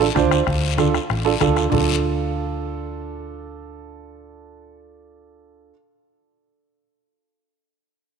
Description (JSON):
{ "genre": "latin, cumbia", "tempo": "190 BPM", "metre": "4/4", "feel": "straight", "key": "D minor", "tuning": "A4 = 440 Hz", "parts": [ { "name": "dark upright piano", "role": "accompaniment", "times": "0.0-5.7 s", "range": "D4 to C5", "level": "-22 LUFS", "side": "right 10 dB", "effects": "none" }, { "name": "hollow-body short-scale fingered electric bass", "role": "bass", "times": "0.0-5.7 s", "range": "A1 to D2", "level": "-25 LUFS", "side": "equal", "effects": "none" }, { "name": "bombo", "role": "percussion", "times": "0.2-1.8 s", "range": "none", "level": "-28 LUFS", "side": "left 6 dB", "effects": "none" }, { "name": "congas", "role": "percussion", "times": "0.2-1.8 s", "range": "none", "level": "-28 LUFS", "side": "left 8 dB", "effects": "none" }, { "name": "guiro", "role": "percussion", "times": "0.2-1.8 s", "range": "none", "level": "-29 LUFS", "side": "left 12 dB", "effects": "none" } ], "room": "moderate plate reverb, RT60 3.4 s", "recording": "1960s-style stereo with parts hard left and right", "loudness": "-18 LUFS", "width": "side -6 dB against mid", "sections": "0.0-1.7 A section; 1.7-4.2 B section", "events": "none", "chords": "0.0 Dm" }